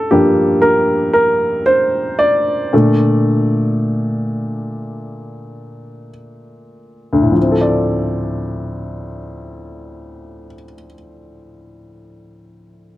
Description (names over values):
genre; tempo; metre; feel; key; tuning
pop; 48-59 BPM; 4/4; straight; D minor; A4 = 440 Hz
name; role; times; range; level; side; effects
warm baby grand piano; accompaniment; 0.0-13.0 s; D2 to D5; -14 LUFS; equal; none
room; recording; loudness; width
light reverb; dry, close 1970s-style studio recording; -13 LUFS; side -15 dB against mid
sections
0.0-7.4 A section; 7.4-12.3 B section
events
slowing down 0.0-7.4; grand piano solo 0.0-7.4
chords
0.0 Gm7; 2.7 Bbmaj7; 7.4 Dm7